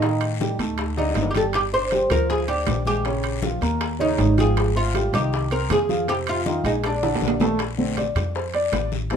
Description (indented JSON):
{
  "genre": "Afro-Cuban jazz",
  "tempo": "159 BPM",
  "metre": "4/4",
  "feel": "straight",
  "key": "Eb major",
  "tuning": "A4 = 440 Hz",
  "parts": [
    { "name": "oud", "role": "melody", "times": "0.0-7.4 s", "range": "D4 to C5", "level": "-24 LUFS", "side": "right 1 dB", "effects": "none" },
    { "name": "warm upright piano", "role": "accompaniment", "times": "0.0-9.2 s", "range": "C3 to D6", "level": "-26 LUFS", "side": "equal", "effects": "none" },
    { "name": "upright bass", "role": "bass", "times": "0.0-9.2 s", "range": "G1 to A2", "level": "-25 LUFS", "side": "equal", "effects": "none" },
    { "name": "bongos", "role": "percussion", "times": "0.0-9.2 s", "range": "none", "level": "-32 LUFS", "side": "left 7 dB", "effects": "none" },
    { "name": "congas", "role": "percussion", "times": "0.0-9.2 s", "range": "none", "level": "-31 LUFS", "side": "left 2 dB", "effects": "none" },
    { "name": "guiro", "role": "percussion", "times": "0.0-9.2 s", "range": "none", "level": "-38 LUFS", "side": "left 8 dB", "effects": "none" },
    { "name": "timbales", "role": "percussion", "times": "0.0-9.2 s", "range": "none", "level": "-30 LUFS", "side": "right 9 dB", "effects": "none" }
  ],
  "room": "light reverb",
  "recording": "minimal, uncompressed stereo recording",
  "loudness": "-20 LUFS",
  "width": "side -7 dB against mid",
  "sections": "0.0-7.6 A section; 7.6-9.2 B section",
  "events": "drum fill 1.0-1.5, 7.0-7.6; upright piano solo 7.6-9.2",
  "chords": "0.0 Ebmaj7#11; 0.8 D5; 1.5 Gm7; 3.1 Bbm; 3.8 Eb9; 4.6 Abmaj7; 6.1 Fm7; 6.8 Bb7; 7.6 Bbmaj9"
}